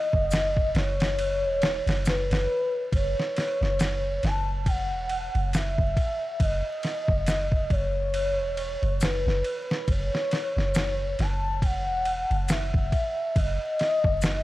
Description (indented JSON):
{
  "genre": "trip hop",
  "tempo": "69 BPM",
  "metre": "4/4",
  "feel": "swing 58% on 16ths",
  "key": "F# dorian",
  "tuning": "A4 = 440 Hz",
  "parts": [
    { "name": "pure breathy sine lead", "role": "melody", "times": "0.0-14.4 s", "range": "B4 to A5", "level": "-27 LUFS", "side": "equal", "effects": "lush chorus, cassette tape, tape echo" },
    { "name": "soft 808-style bass", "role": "bass", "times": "0.1-14.4 s", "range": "E1 to F#1", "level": "-28 LUFS", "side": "equal", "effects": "none" },
    { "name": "dusty soul sampler-style drum kit", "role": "drums", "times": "0.1-14.4 s", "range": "kick drum, ride cymbal, snare drum", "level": "-28 LUFS", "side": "equal", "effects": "studio reverb" },
    { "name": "maracas", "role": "percussion", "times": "0.3-14.4 s", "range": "none", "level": "-39 LUFS", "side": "left 3 dB", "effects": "none" }
  ],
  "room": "little or no reverb",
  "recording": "dry, gritty hardware recording, transformer saturation, vinyl crackle",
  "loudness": "-23 LUFS",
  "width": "side -17 dB against mid",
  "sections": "0.0-14.4 A section",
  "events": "none",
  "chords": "0.0 F#5"
}